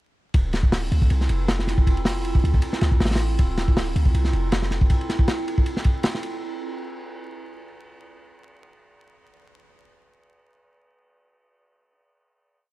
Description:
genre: drum and bass, jungle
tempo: 158 BPM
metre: 4/4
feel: swing 55% on 16ths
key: D minor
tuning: A4 = 441 Hz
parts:
  - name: warbly tape-like pad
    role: sustained chords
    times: 0.5-6.4 s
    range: C4 to A4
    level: -31 LUFS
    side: right 2 dB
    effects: chorus, built-in reverb
  - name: warm 808-style bass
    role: bass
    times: 0.3-4.9 s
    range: D1 to D2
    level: -23 LUFS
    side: equal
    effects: tube saturation
  - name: crunchy breakbeat drum kit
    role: drums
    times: 0.3-6.3 s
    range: hi-hat, kick drum, ride cymbal, snare drum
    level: -22 LUFS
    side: equal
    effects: none
room: little or no reverb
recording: dark, warm production, vinyl crackle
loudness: -19 LUFS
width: side -18 dB against mid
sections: 0.3-6.4 drop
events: drop 0.3-6.4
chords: 0.3 Dm9

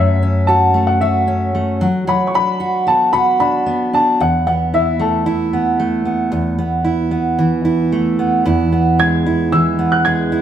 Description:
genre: pop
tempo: 113 BPM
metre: 4/4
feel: straight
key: unclear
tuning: A4 = 440 Hz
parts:
  - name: warm upright piano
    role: melody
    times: 0.0-5.8, 9.0-10.4 s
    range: A4 to G#6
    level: -17 LUFS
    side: left 2 dB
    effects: none
  - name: fingerpicked steel-string acoustic guitar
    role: accompaniment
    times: 0.0-10.4 s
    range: E2 to F#4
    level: -15 LUFS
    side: right 1 dB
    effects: none
room: wet stone room reverb, RT60 1.1 s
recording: band playing live in one room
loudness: -13 LUFS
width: side -10 dB against mid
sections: 0.0-6.3 A section; 6.3-8.5 B section; 8.5-10.4 C section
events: none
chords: 0.0 F#m7; 1.8 Bm/F#; 4.2 Esus4; 8.5 E

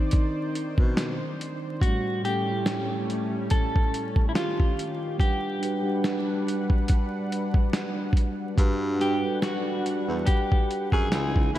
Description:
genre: lo-fi hip hop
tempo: 71 BPM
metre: 4/4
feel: swing 56% on 16ths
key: G major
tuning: A4 = 440 Hz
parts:
  - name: clean electric guitar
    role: melody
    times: 0.0-11.6 s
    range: Eb4 to A4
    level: -30 LUFS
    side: equal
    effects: wide subtle chorus
  - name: mellow tine electric piano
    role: accompaniment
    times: 0.0-11.6 s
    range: A2 to F#5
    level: -30 LUFS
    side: right 1 dB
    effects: slow stereo tremolo
  - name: lush unison pad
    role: sustained chords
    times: 0.0-11.6 s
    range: C#3 to F#5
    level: -34 LUFS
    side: left 1 dB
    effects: chorus
  - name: lo-fi sampler-style drum kit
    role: drums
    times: 0.1-11.6 s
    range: hi-hat, kick drum, snare drum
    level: -24 LUFS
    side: equal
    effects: none
  - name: breathy baritone saxophone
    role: bass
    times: 0.8-1.2, 8.6-11.6 s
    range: C#2 to B2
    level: -29 LUFS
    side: left 1 dB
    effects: none
room: moderate lush hall reverb, RT60 2.6 s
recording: dreamy mix soaked in reverb, vinyl crackle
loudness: -23 LUFS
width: side -13 dB against mid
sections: 0.0-8.6 A section; 8.6-11.6 B section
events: none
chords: 0.0 Cmadd9; 1.8 A7; 4.3 Eb9; 5.2 Gmaj7

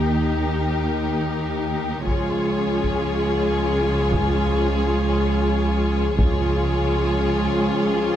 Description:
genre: cinematic, epic orchestral film score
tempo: free time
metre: none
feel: none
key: unclear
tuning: A4 = 440 Hz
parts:
  - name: warm symphonic violin section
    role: melody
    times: 0.0-8.2 s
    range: Bb4 to Db5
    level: -32 LUFS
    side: left 5 dB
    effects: none
  - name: warm symphonic violin section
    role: second line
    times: 0.0-8.2 s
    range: G4 to Ab4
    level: -28 LUFS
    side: left 3 dB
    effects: none
  - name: warm symphonic viola section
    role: accompaniment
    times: 0.0-8.2 s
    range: Eb4 to F4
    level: -27 LUFS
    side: right 1 dB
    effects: none
  - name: dark French horn section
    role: sustained chords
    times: 0.0-8.2 s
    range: Eb3 to Ab4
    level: -26 LUFS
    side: left 5 dB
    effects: none
  - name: clear symphonic double bass section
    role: bass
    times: 0.0-8.2 s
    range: Db2 to Eb2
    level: -25 LUFS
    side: right 2 dB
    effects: none
  - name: warm symphonic cello section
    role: bass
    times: 0.0-8.2 s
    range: Db2 to Eb2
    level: -26 LUFS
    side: right 2 dB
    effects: none
  - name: taiko ensemble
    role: drums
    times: 2.1-6.7 s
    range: none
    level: -23 LUFS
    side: equal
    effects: none
room: moderate scoring stage reverb, RT60 1.8 s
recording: none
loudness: -19 LUFS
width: side -10 dB against mid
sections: 0.0-8.2 A section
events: build-up 0.0-8.2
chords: 0.0 Eb; 2.1 Db

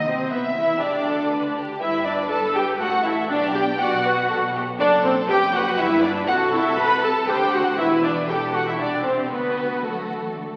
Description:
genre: quick classical-period movement for string orchestra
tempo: 120 BPM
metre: 3/4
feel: straight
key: G major from 4.8 s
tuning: A4 = 440 Hz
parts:
  - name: rich symphonic violin section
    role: melody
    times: 0.0-10.6 s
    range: F#4 to E5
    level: -30 LUFS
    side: equal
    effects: none
  - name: warm symphonic violin section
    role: second line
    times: 0.0-10.6 s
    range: A4 to B5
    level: -27 LUFS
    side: equal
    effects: none
  - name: dark studio cello section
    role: bass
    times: 0.0-10.4 s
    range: E2 to F#3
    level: -35 LUFS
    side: equal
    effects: none
  - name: dark studio double bass section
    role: bass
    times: 0.0-10.6 s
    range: E1 to E2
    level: -38 LUFS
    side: equal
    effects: none
  - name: warm studio viola section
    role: accompaniment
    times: 0.1-10.6 s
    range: A3 to B4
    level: -24 LUFS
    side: equal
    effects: none
room: wet concert hall reverb, RT60 1.8 s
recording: very old 78 rpm record, vinyl crackle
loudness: -21 LUFS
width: mono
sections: 0.0-10.6 A section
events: none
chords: 0.3 E5/B; 1.8 G; 2.8 F#m7/A; 3.3 G/B; 4.8 Gmaj9/F#; 5.8 G; 6.3 Am/C; 7.3 D7; 7.8 E5; 8.8 Csus2; 9.3 D

